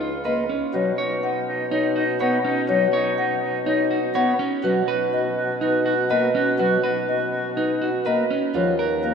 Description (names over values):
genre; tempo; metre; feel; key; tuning
classical, minimalist pattern music; 123 BPM; 4/4; straight; unclear; A4 = 442 Hz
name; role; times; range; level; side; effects
marimba with soft mallets; melody; 0.0-9.1 s; B4 to F#5; -25 LUFS; left 4 dB; none
warm oboe; second line; 0.0-9.1 s; D#4 to F#4; -28 LUFS; right 3 dB; none
clean electric guitar; arpeggios; 0.0-9.1 s; Db4 to Db5; -25 LUFS; right 3 dB; none
mellow bassoon; bass; 0.0-9.1 s; Db2 to B2; -28 LUFS; equal; none
chamber organ, principal chorus; accompaniment; 0.3-9.1 s; F3 to B3; -29 LUFS; equal; none
room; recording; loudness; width
wet cathedral reverb, RT60 6.5 s; in a vast, echoing space; -19 LUFS; side -6 dB against mid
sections
0.0-9.1 A section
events
none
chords
0.0 Db9; 0.7 B; 4.6 Bmaj9; 8.5 Ebm9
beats
0.25 | 0.74 1.23 1.72 2.20 | 2.69 3.18 3.67 4.16 | 4.64 5.13 5.62 6.11 | 6.59 7.08 7.57 8.06 | 8.55 9.03